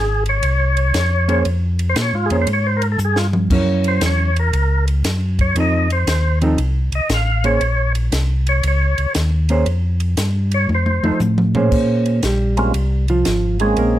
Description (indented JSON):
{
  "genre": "soul jazz organ trio",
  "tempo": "117 BPM",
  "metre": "4/4",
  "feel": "swing 67% on 8ths",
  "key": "Bb dorian",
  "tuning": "A4 = 440 Hz",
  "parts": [
    { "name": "percussive tonewheel organ", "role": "melody", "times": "0.0-14.0 s", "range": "Ab3 to F5", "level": "-20 LUFS", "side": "equal", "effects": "slow rotary speaker" },
    { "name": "mellow tonewheel organ", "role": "bass", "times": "0.0-14.0 s", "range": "Ab1 to Bb2", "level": "-17 LUFS", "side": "equal", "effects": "chorus vibrato, slow rotary speaker" },
    { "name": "compact cocktail drum kit", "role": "drums", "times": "0.3-13.9 s", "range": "crash cymbal, hi-hat, kick drum, ride cymbal, snare drum, toms", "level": "-23 LUFS", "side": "equal", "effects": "none" },
    { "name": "hollow-body jazz guitar", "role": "accompaniment", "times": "1.3-14.0 s", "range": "F3 to C5", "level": "-19 LUFS", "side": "right 2 dB", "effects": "none" }
  ],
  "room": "light reverb",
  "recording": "none",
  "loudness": "-15 LUFS",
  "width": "side -13 dB against mid",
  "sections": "0.0-11.7 A section; 11.7-14.0 A section",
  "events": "tonewheel organ solo 0.0-11.7; drum fill 3.0-3.5, 10.7-11.7; hollow-body jazz guitar solo 11.7-14.0",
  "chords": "0.0 Bbm9; 3.5 Gb7; 5.6 F7; 7.6 Bbmadd9; 10.7 F7; 11.7 Bbm9"
}